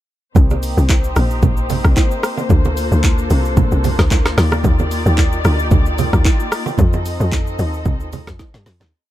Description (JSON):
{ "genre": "amapiano", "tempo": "112 BPM", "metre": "4/4", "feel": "swing 55% on 16ths", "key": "C dorian", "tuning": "A4 = 440 Hz", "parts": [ { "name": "congas and bongos", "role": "percussion", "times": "0.3-8.9 s", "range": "none", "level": "-22 LUFS", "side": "right 6 dB", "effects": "none" }, { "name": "muted studio string section", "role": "sustained chords", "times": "0.4-8.9 s", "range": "Bb3 to Eb5", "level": "-23 LUFS", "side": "left 2 dB", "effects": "sidechain pumping" }, { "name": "tight log drum bass", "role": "bass", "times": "0.4-8.9 s", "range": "Bb1 to G2", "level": "-16 LUFS", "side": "equal", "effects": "none" }, { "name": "deep house drum kit", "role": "drums", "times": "0.4-8.9 s", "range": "handclaps, hi-hat, kick drum, rim click, shaker, snare drum", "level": "-16 LUFS", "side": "equal", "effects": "none" } ], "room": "little or no reverb", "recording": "dark, warm production", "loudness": "-13 LUFS", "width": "side -14 dB against mid", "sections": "0.4-8.9 drop", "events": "drop 0.4-8.9; fade-out 6.8-8.9; drum fill 8.4-8.9", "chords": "0.4 Cm7; 2.5 Bbmaj9; 4.4 Ebmaj9; 6.8 F7" }